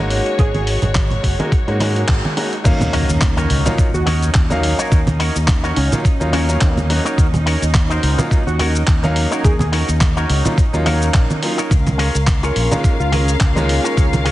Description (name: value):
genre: nu-disco, nu disco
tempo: 106 BPM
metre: 4/4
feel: swing 55% on 16ths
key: Eb minor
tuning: A4 = 440 Hz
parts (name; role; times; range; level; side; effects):
- bright grand piano; accompaniment; 0.0-14.3 s; Gb3 to F5; -23 LUFS; equal; tape echo
- rich studio string section; sustained chords; 0.0-14.3 s; Ab3 to F5; -26 LUFS; right 1 dB; sidechain pumping
- fingered electric bass with an envelope filter; bass; 0.0-14.3 s; Gb1 to Ab2; -18 LUFS; equal; tube saturation
- dusty soul sampler-style drum kit; drums; 0.1-14.3 s; crash cymbal, handclaps, hi-hat, shaker; -24 LUFS; equal; none
- wide unison lead; melody; 0.4-13.2 s; Db4 to Ab4; -28 LUFS; right 1 dB; analog chorus, tape echo
- electronic kick drum; drums; 0.4-14.1 s; none; -15 LUFS; equal; none
- bongos and congas; percussion; 0.4-14.3 s; none; -22 LUFS; right 1 dB; none
- impact; sound effects; 2.8-4.9 s; none; -26 LUFS; equal; none
- electric guitar with an envelope filter; riff; 2.9-14.3 s; Eb4 to Db5; -24 LUFS; left 1 dB; wide subtle chorus
room: light reverb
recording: heavily compressed radio sound, nothing above 10.8 kHz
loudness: -14 LUFS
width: side -16 dB against mid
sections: 0.0-2.7 A section; 2.7-14.3 B section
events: band accent 2.1; drop 2.7-14.3; impact 2.7-4.9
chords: 0.0 Ab7sus4; 2.7 Ebm7; 11.7 Db6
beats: | 0.39 0.96 1.52 2.09 | 2.65 3.22 3.79 4.35 | 4.92 5.48 6.05 6.62 | 7.18 7.75 8.31 8.88 | 9.45 10.01 10.58 11.14 | 11.71 12.28 12.84 13.41 | 13.97